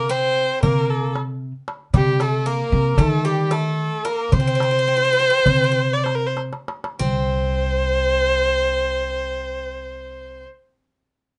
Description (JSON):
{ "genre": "Turkish makam ensemble", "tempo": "184-230 BPM (eighths)", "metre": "9/8", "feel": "straight", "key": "C makam huseyni", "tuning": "A4 = 440 Hz", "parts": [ { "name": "clear kamancheh", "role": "melody", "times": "0.0-10.4 s", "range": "G4 to D5", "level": "-23 LUFS", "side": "equal", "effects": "none" }, { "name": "Greek bouzouki", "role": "second line", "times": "0.0-10.4 s", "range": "G3 to C4", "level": "-31 LUFS", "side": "equal", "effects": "none" }, { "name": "upright bass", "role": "bass", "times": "0.0-10.4 s", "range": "C2 to Eb3", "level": "-25 LUFS", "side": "equal", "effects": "none" }, { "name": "darbuka", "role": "percussion", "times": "0.6-7.3 s", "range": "none", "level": "-26 LUFS", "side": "equal", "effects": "none" } ], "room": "light reverb", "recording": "nothing above 10.9 kHz", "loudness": "-20 LUFS", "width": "mono", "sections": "0.0-7.0 A section; 7.0-9.9 B section", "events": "slowing down 2.5-7.0; drum fill 6.4-7.0", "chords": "none", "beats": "0.11 0.37 0.63 0.89 1.15 1.41 1.68 | 1.94 2.20 2.46 2.72 2.98 3.25 3.51 3.78 4.05 | 4.32 4.60 4.88 5.17 5.46 5.75 6.06 6.36 6.68 | 7.00 7.33 7.65 7.98 8.30 8.63 8.96 9.28 9.61" }